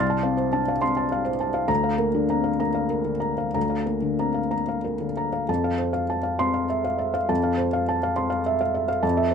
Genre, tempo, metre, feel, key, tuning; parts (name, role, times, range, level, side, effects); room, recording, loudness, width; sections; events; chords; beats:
neoclassical minimalist piano; 62-69 BPM (dotted quarters); 6/8; rubato; F major; A4 = 440 Hz
felt-muted upright piano; solo; 0.0-9.3 s; C2 to A6; -22 LUFS; left 1 dB
moderate small room reverb, RT60 0.5 s; -22 LUFS; side -6 dB against mid
0.0-5.5 A section; 5.5-9.3 B section
0.0 F/C; 1.7 Bb/D; 5.5 F
0.82 | 1.69 2.61 | 3.56 4.52 | 5.49 6.40 | 7.30 8.17 | 9.04